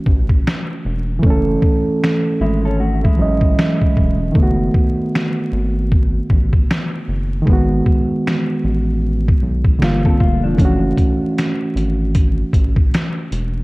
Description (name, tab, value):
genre	lo-fi hip hop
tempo	77 BPM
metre	4/4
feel	swing 63% on 16ths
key	F# dorian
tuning	A4 = 440 Hz
part	overdriven reed electric piano	accompaniment	0.0-13.6 s	D3 to D#5	-19 LUFS	right 1 dB	cassette tape
part	round analog bass	bass	0.1-13.6 s	E1 to B1	-19 LUFS	equal	none
part	trip hop sampler-style drum kit	drums	0.1-13.5 s	finger snaps, hi-hat, kick drum, snare drum	-16 LUFS	equal	vintage 12-bit sampler grit
part	mellow electric guitar	second line	2.4-4.2, 10.1-10.8 s	F3 to A4	-24 LUFS	left 1 dB	tape echo
room	digital ambience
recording	dark, warm production, vinyl crackle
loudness	-14 LUFS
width	side -22 dB against mid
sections	0.0-13.6 A section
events	break 0.0-10.6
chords	0.0 F#m7; 4.4 B7/F#; 7.5 G#m7; 9.8 Gm7; 10.6 F#m7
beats	0.46 | 1.23 2.01 2.79 3.57 | 4.35 5.13 5.91 6.69 | 7.47 8.25 9.03 9.80 | 10.58 11.36 12.14 12.92